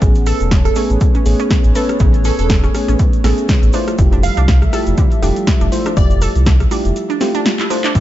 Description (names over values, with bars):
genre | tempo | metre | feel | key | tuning
deep house | 121 BPM | 4/4 | swing 56% on 16ths | unclear | A4 = 440 Hz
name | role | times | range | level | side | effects
hollow soft pad | sustained chords | 0.0-7.9 s | F3 to E5 | -26 LUFS | right 1 dB | chorus, sidechain pumping
mellow FM electric piano | stabs | 0.0-8.0 s | F#3 to C5 | -20 LUFS | left 1 dB | chorus, cassette tape, sidechain pumping, tape echo
sub bass with octave | bass | 0.0-8.0 s | E1 to D2 | -15 LUFS | equal | none
deep house drum kit | drums | 0.0-8.0 s | handclaps, hi-hat, rim click, snare drum | -22 LUFS | equal | overdrive
electronic kick drum | drums | 0.0-8.0 s | none | -14 LUFS | equal | none
tube shaker | percussion | 0.0-8.0 s | none | -35 LUFS | left 2 dB | none
glassy wavetable pluck | melody | 0.3-6.4 s | A4 to F5 | -24 LUFS | right 5 dB | chorus, vintage 12-bit sampler grit, dub echo
analog pluck | arpeggios | 0.3-7.9 s | C#3 to A4 | -25 LUFS | right 4 dB | chorus, sidechain pumping, tape echo
room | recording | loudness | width
little or no reverb | dark, warm production, nothing above 7.8 kHz | -12 LUFS | side -13 dB against mid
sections
0.0-8.0 A section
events
drop 0.0-8.0; break 7.0-8.0; drum fill 7.6-8.0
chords
0.0 Amaj9; 3.7 Fmaj9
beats
| 0.02 0.51 1.01 1.50 | 2.00 2.50 2.99 3.49 | 3.98 4.48 4.98 5.47 | 5.97 6.46 6.96 7.46 | 7.95